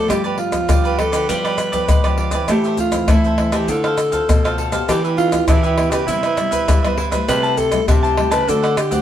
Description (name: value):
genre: samba and choro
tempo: 100 BPM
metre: 4/4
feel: straight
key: unclear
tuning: A4 = 440 Hz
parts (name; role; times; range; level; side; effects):
- growling alto saxophone; melody; 0.0-9.0 s; E4 to B4; -20 LUFS; right 1 dB; none
- cavaquinho; accompaniment; 0.0-9.0 s; D4 to A5; -23 LUFS; right 2 dB; none
- nylon-string guitar; accompaniment; 0.0-9.0 s; G2 to A4; -27 LUFS; left 4 dB; none
- nylon-string guitar; bass; 0.1-9.0 s; B2 to A3; -23 LUFS; right 1 dB; none
- maracas, surdo, pandeiro and tamborim; percussion; 0.1-9.0 s; none; -19 LUFS; left 1 dB; none
room: light reverb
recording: band playing live in one room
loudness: -15 LUFS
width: side -10 dB against mid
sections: 0.0-9.0 A section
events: none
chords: 0.1 G7; 2.5 Am; 3.7 Dm7; 4.9 Em7; 6.1 Cmaj7; 7.3 Am7/C; 8.5 D7